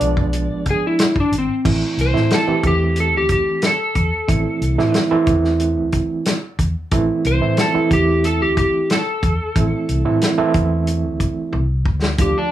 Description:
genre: straight-eighth soul blues.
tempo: 91 BPM.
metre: 4/4.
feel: straight.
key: A minor.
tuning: A4 = 439 Hz.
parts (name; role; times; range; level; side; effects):
electric slide guitar; melody; 0.0-12.5 s; C4 to D5; -20 LUFS; left 1 dB; plate reverb.
overdriven reed electric piano; accompaniment; 0.0-12.5 s; E3 to G4; -20 LUFS; right 4 dB; fast tremolo.
vintage muted fingered electric bass; bass; 0.0-12.3 s; G#1 to A2; -20 LUFS; equal; none.
warm soul drum kit; drums; 0.0-12.3 s; crash cymbal, hi-hat, kick drum, snare drum, toms; -21 LUFS; left 1 dB; none.
room: light reverb.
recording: small room ambience.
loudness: -15 LUFS.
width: side -12 dB against mid.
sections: 0.0-1.7 A section; 1.7-12.5 B section.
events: electric slide guitar solo 1.7-12.5; drum fill 11.5-12.2.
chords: 0.0 E7b9 (rootless); 1.7 Am.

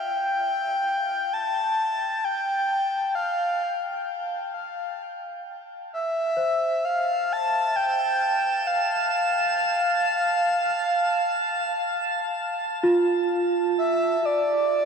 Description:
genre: ambient.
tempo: free time.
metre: none.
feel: none.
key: unclear.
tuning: A4 = 440 Hz.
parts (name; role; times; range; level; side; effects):
breathy flute-like synth lead; melody; 0.0-14.9 s; D5 to A5; -24 LUFS; equal; chorus, tremolo, ping-pong delay.
celesta; arpeggios; 0.0-14.9 s; F4 to E5; -26 LUFS; right 2 dB; ping-pong delay.
drifting glass-harmonics texture; texture; 7.3-14.2 s; A5; -28 LUFS; right 1 dB; chorus, built-in reverb.
room: wet huge ambient reverb, RT60 8.8 s.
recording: none.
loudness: -22 LUFS.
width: side -6 dB against mid.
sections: 0.0-14.2 A section.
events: fade-in on celesta 0.0-14.2.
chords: 0.0 Fmaj9; 14.2 Dm.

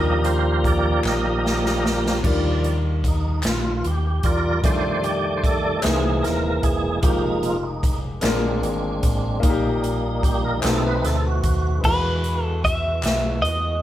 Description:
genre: slow gospel.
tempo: 50 BPM (dotted quarters).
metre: 6/8.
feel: straight.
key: Eb major.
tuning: A4 = 440 Hz.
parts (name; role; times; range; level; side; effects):
warm baby grand piano; accompaniment; 0.0-13.8 s; Bb2 to B4; -28 LUFS; left 3 dB; none.
tonewheel organ; sustained chords; 0.0-13.8 s; Eb3 to Eb5; -24 LUFS; right 1 dB; chorus vibrato, fast rotary speaker.
fingered electric bass; bass; 0.0-13.8 s; D#1 to F2; -24 LUFS; equal; none.
swinging big-band drum kit; drums; 0.2-13.6 s; crash cymbal, hi-hat, kick drum, snare drum; -24 LUFS; equal; none.
group handclap; percussion; 1.0-13.4 s; none; -32 LUFS; left 4 dB; none.
twelve-string electric guitar; melody; 11.8-13.8 s; B4 to E5; -23 LUFS; equal; none.
room: light reverb.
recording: band playing live in one room.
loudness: -19 LUFS.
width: side -12 dB against mid.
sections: 0.0-2.2 A section; 2.2-11.8 B section; 11.8-13.8 C section.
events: tonewheel organ solo 0.0-2.2, 2.2-11.8; drum fill 1.0-2.2.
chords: 0.0 Ebmaj7; 2.2 Ebmaj9; 4.6 F13; 5.8 C7alt; 7.0 Fm11; 8.2 Bb7; 9.4 Eb/Bb; 10.6 B7b9; 11.8 Eadd9.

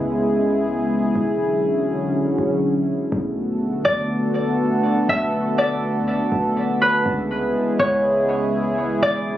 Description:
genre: hip hop, atmospheric cloud-rap.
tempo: 122 BPM.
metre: 4/4.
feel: half-time.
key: B dorian.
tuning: A4 = 438 Hz.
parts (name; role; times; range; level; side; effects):
dark analog pad; sustained chords; 0.0-9.4 s; C#3 to A4; -20 LUFS; equal; chorus.
warm 808-style bass; bass; 0.0-9.4 s; E1 to C#2; -32 LUFS; equal; none.
concert harp; melody; 3.8-9.4 s; B4 to E5; -22 LUFS; equal; low-pass filter, tape echo.
room: light reverb.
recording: recorded on a phone in the room, studio ambience.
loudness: -18 LUFS.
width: side -12 dB against mid.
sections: 0.0-3.1 A section; 3.1-9.4 B section.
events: none.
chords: 0.0 C#m7; 1.2 E13; 3.1 Bm7; 7.1 C#m7.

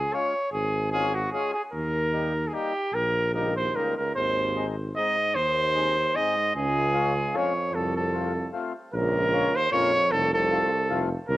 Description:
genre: alpine folk, alpine dance band.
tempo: 150 BPM.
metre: 3/4.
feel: swing 55% on 8ths.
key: Db major.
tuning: A4 = 442 Hz.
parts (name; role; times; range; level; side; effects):
clear trumpet; melody; 0.0-11.4 s; Gb4 to Eb5; -25 LUFS; equal; cassette tape.
warm tuba; bass; 0.0-11.4 s; F1 to F2; -30 LUFS; equal; none.
mellow accordion; accompaniment; 0.1-11.1 s; G3 to F4; -32 LUFS; left 5 dB; cassette tape.
warm euphonium; second line; 3.4-11.4 s; C2 to Ab2; -32 LUFS; right 4 dB; cassette tape.
room: moderate spring reverb, RT60 2.1 s.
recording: home recording on cassette.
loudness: -23 LUFS.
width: side -16 dB against mid.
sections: 0.0-8.9 A section; 8.9-11.4 B section.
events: none.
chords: 0.0 Db; 1.7 Eb; 4.2 Ab; 6.5 Db; 7.7 F; 8.9 Bbm; 10.1 F.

